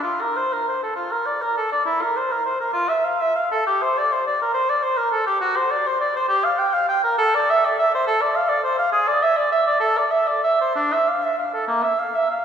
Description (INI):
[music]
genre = classical, baroque-style fantasia for unaccompanied oboe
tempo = 67 BPM (dotted quarters)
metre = 6/8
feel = uneven beats, rubato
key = F major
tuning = A4 = 440 Hz
[part]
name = warm oboe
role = solo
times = 0.0-12.4 s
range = Bb3 to G5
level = -18 LUFS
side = equal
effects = none
[sound]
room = wet church reverb, RT60 3.5 s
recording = recorded in a church or concert hall, small room ambience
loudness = -18 LUFS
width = side -8 dB against mid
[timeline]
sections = 0.0-12.4 A section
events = none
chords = none